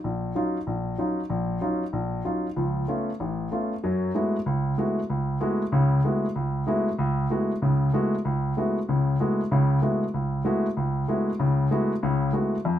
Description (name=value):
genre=jazz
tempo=190 BPM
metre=4/4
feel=swing 63% on 8ths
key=F# minor from 3.8 s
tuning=A4 = 441 Hz
part: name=warm grand piano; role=solo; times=0.0-12.8 s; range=A1 to F#4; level=-23 LUFS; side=equal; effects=none
room=wet studio reverb, RT60 0.8 s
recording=minimal, uncompressed stereo recording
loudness=-23 LUFS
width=side -11 dB against mid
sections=0.0-3.8 A section; 3.8-12.8 B section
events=none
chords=0.0 Ebm9; 2.6 Dbaug7; 3.8 F#m11